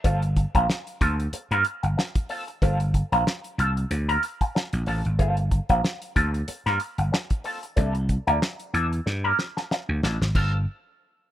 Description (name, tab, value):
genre	funk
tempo	93 BPM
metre	4/4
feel	swing 56% on 16ths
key	G dorian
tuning	A4 = 440 Hz
part	electric guitar with an envelope filter	accompaniment	0.0-10.6 s	Bb3 to Bb4	-26 LUFS	equal	wah, phaser
part	vintage slap bass	bass	0.0-10.7 s	G1 to G2	-24 LUFS	equal	none
part	cloth-damped thuddy drum kit	drums	0.0-10.5 s	crash cymbal, hi-hat, kick drum, snare drum	-26 LUFS	equal	none
room	small room ambience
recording	rough home demo mix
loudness	-22 LUFS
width	side -12 dB against mid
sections	0.0-10.3 A section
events	drum fill 9.1-10.3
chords	0.0 Gm11; 7.8 C13; 10.3 Gm11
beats	| 0.05 0.69 1.33 1.98 | 2.62 3.26 3.91 4.55 | 5.19 5.84 6.48 7.13 | 7.77 8.42 9.06 9.71 | 10.35